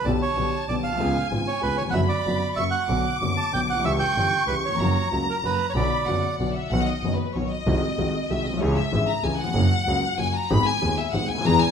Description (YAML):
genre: tango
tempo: 190 BPM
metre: 3/4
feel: rubato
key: B minor, B major from 6.7 s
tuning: A4 = 439 Hz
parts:
  - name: bandoneon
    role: melody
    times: 0.0-6.4 s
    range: A#4 to A5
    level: -26 LUFS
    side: right 5 dB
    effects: none
  - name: warm studio violin section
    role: second line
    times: 0.0-11.7 s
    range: B4 to D6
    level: -27 LUFS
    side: left 4 dB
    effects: none
  - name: warm grand piano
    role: accompaniment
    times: 0.1-11.6 s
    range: D#1 to G#4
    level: -26 LUFS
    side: left 2 dB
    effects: none
  - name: clear double bass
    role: bass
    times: 0.1-11.6 s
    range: F#1 to E2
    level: -26 LUFS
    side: right 1 dB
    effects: none
room: moderate scoring stage reverb, RT60 1.5 s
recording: minimal, uncompressed stereo recording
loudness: -21 LUFS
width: side -7 dB against mid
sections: 0.0-6.7 A section; 6.7-11.7 B section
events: violin section solo 6.7-11.7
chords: 0.0 G/B; 1.0 C#7; 1.9 Bm/F#; 2.6 F#; 2.9 Bm; 3.9 C#dim; 4.8 F#; 5.7 Bm; 6.7 B; 7.7 G#7/B#; 8.6 C#m; 9.6 F#; 10.5 G#m